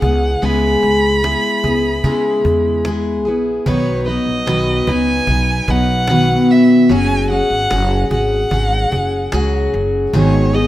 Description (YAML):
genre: acoustic pop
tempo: 74 BPM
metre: 4/4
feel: straight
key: B major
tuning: A4 = 440 Hz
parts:
  - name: warm violin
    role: melody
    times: 0.0-10.7 s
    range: C#5 to B5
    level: -20 LUFS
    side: right 1 dB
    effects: none
  - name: picked steel-string acoustic guitar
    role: accompaniment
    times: 0.0-10.7 s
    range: G#2 to B4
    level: -15 LUFS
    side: left 1 dB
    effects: none
  - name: upright bass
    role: bass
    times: 0.0-10.6 s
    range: F#1 to C#3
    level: -19 LUFS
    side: equal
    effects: none
  - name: cajon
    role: drums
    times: 0.0-10.6 s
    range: none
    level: -23 LUFS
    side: equal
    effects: none
room: light reverb, small room ambience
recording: rough home demo mix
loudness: -13 LUFS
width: side -14 dB against mid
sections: 0.0-3.7 A section; 3.7-10.7 B section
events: none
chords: 0.0 C#m7; 3.7 B; 6.9 F#sus2; 10.1 G#m7